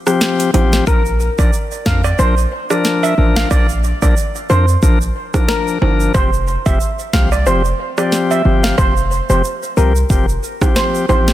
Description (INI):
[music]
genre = dancehall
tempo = 91 BPM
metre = 4/4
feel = swing 56% on 16ths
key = unclear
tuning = A4 = 440 Hz
[part]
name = bright tonewheel organ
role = accompaniment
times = 0.1-11.3 s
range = F3 to Bb4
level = -19 LUFS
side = left 4 dB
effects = none
[part]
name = afro-pop drum kit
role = drums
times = 0.1-11.3 s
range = hi-hat, kick drum, rim click, snare drum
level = -17 LUFS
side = equal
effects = none
[part]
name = tube shaker and timbales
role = percussion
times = 0.1-11.3 s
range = none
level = -26 LUFS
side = right 8 dB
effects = none
[part]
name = hard-hitting 808-style bass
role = bass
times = 0.5-11.3 s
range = F1 to F2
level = -15 LUFS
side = equal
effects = none
[part]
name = steel pan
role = melody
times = 0.9-11.2 s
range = Bb4 to F5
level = -19 LUFS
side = right 2 dB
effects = tape echo
[sound]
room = digital ambience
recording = dense, heavily limited modern master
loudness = -12 LUFS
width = side -13 dB against mid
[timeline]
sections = 0.9-11.3 A section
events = break 0.0-0.9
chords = 0.0 Fsus2; 0.9 Bb; 6.1 Fsus2